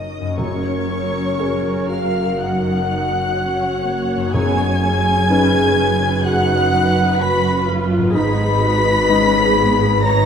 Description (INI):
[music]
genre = cinematic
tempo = 62 BPM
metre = 4/4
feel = rubato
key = F# major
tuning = A4 = 440 Hz
[part]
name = rich studio violin section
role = melody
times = 0.0-10.3 s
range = C#6 to B6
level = -25 LUFS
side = left 3 dB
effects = none
[part]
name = large flute ensemble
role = second line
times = 0.0-10.3 s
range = C#5 to B5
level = -23 LUFS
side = left 1 dB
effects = none
[part]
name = rich studio violin section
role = second line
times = 0.0-10.3 s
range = C#5 to B5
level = -25 LUFS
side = equal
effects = none
[part]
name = felt-muted upright piano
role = accompaniment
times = 0.0-10.3 s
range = F#2 to F#5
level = -25 LUFS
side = left 1 dB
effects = none
[part]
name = warm studio viola section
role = accompaniment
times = 0.0-10.3 s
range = A#3 to C#5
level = -24 LUFS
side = equal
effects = none
[part]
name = mellow French horn section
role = sustained chords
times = 0.0-10.3 s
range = C#4 to B4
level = -23 LUFS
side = left 4 dB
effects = none
[part]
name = concert harp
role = arpeggios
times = 0.0-10.3 s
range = F#2 to C#5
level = -29 LUFS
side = left 6 dB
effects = none
[part]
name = rich studio cello section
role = bass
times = 0.0-10.3 s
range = F#2 to G#2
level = -23 LUFS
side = right 2 dB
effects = none
[part]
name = warm studio double bass section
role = bass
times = 0.0-10.3 s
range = F#1 to G#1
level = -24 LUFS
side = right 3 dB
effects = none
[part]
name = timpani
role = percussion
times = 0.4-5.7 s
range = F#2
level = -26 LUFS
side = equal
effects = none
[sound]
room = moderate scoring stage reverb, RT60 1.5 s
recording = none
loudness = -15 LUFS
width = side -7 dB against mid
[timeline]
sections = 0.4-10.3 A section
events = none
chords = 0.4 F#add9; 4.3 Badd9/F#; 8.2 G#m